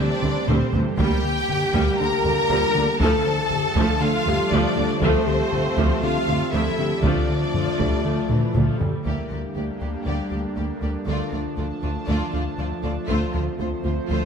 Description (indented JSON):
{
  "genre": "cinematic, hybrid orchestral and electronic film score",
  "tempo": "119 BPM",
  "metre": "4/4",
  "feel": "straight",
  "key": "D minor",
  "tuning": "A4 = 440 Hz",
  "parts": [
    { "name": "rich symphonic violin section", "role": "melody", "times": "0.0-14.2 s", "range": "C5 to Bb5", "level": "-29 LUFS", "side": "left 2 dB", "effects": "none" },
    { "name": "clear symphonic violin section", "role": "second line", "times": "0.0-14.2 s", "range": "C4 to Bb4", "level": "-29 LUFS", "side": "left 2 dB", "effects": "none" },
    { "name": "dark symphonic viola section", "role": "accompaniment", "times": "0.0-14.2 s", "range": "C3 to C4", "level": "-30 LUFS", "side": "equal", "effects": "none" },
    { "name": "airy breathy pad", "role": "sustained chords", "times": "0.0-14.2 s", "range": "D3 to A5", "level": "-32 LUFS", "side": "right 1 dB", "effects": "chorus" },
    { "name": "bright trombone section", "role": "sustained chords", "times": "0.0-14.2 s", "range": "D3 to C4", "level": "-33 LUFS", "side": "right 4 dB", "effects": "none" },
    { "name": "mellow French horn section", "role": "sustained chords", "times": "0.0-14.2 s", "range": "Bb3 to A4", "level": "-30 LUFS", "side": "left 3 dB", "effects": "none" },
    { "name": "harp-like synth pluck", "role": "arpeggios", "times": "0.0-14.2 s", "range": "C3 to G4", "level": "-32 LUFS", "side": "right 6 dB", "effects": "none" },
    { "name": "round analog bass", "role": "riff", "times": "0.0-14.2 s", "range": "D2 to D3", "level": "-28 LUFS", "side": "left 2 dB", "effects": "none" },
    { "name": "rich symphonic cello section", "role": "bass", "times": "0.0-14.2 s", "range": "D2", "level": "-29 LUFS", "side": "right 2 dB", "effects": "none" },
    { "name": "rich symphonic double bass section", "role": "bass", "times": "0.0-14.2 s", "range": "D2", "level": "-30 LUFS", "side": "right 4 dB", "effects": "none" },
    { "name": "felt-muted upright piano", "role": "texture", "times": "0.0-14.2 s", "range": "G3 to E5", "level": "-37 LUFS", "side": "left 2 dB", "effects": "none" },
    { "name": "taiko ensemble", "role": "drums", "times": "0.2-10.0, 13.1-14.1 s", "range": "none", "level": "-27 LUFS", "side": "equal", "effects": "none" }
  ],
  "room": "moderate scoring stage reverb, RT60 1.8 s",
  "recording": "none",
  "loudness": "-20 LUFS",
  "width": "side -6 dB against mid",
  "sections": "0.0-9.1 A section; 9.1-14.2 B section",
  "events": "drum fill 0.2-1.0, 8.3-9.1",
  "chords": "0.0 C/D; 1.0 Gm/D; 3.0 Dm; 9.1 Gm/D; 11.1 Dm; 13.1 F/D",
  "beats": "0.48 | 0.99 1.49 2.00 2.50 | 3.01 3.51 4.01 4.52 | 5.02 5.53 6.03 6.54 | 7.04 7.54 8.05 8.55 | 9.06 9.56 10.06 10.57 | 11.07 11.58 12.08 12.59 | 13.09 13.59 14.10"
}